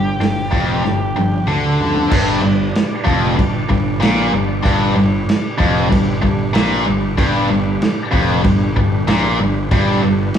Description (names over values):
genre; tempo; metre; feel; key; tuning
blues rock power trio and southern rock; 95 BPM; 4/4; straight; G mixolydian; A4 = 439 Hz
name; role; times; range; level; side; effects
octave-fuzz lead guitar; melody; 0.0-1.5 s; G4; -24 LUFS; right 1 dB; wah, distortion
overdriven tonewheel organ; sustained chords; 0.0-10.4 s; G3 to D5; -28 LUFS; right 3 dB; slow rotary speaker, chorus vibrato
tight distorted guitar; riff; 0.0-10.3 s; F2 to D3; -16 LUFS; equal; distortion
fuzz picked electric bass; bass; 0.0-10.3 s; F1 to D2; -22 LUFS; equal; overdrive
vintage drum kit; drums; 0.2-10.4 s; crash cymbal, hi-hat, kick drum, snare drum, toms; -19 LUFS; right 1 dB; none
room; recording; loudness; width
wet large studio reverb, RT60 1.2 s; band playing live in one room; -14 LUFS; side -8 dB against mid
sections
0.0-2.1 A section; 2.1-10.4 B section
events
drum fill 0.8-2.1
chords
0.0 G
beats
0.20 0.84 1.47 | 2.11 2.74 3.38 4.01 | 4.64 5.28 5.91 6.55 | 7.18 7.81 8.45 9.08 | 9.72 10.35